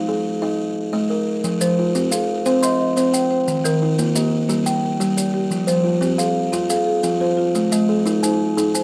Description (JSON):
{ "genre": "southern african traditional, mbira-style interlocking cycle", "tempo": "118 BPM (dotted quarters)", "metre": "12/8", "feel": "straight", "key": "F equiheptatonic", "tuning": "A4 = 440 Hz", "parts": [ { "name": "buzzing kalimba", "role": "arpeggios", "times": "0.0-8.8 s", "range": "Eb3+29c to C6", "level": "-21 LUFS", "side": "equal", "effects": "none" }, { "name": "maracas", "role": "percussion", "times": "1.4-8.8 s", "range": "none", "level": "-29 LUFS", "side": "equal", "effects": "none" }, { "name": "marimba with soft mallets", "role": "arpeggios", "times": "1.6-8.8 s", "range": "Eb3+29c to Eb5+29c", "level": "-24 LUFS", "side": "equal", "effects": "none" } ], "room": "moderate studio reverb, RT60 0.5 s", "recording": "dry, close 1970s-style studio recording", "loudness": "-19 LUFS", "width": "mono", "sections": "0.0-1.4 A section; 1.4-8.8 A section", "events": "none", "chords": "0.0 Ab5; 1.4 Fm; 2.5 Cm; 3.5 Eb; 4.5 Gm; 5.5 Fm; 7.6 Ab" }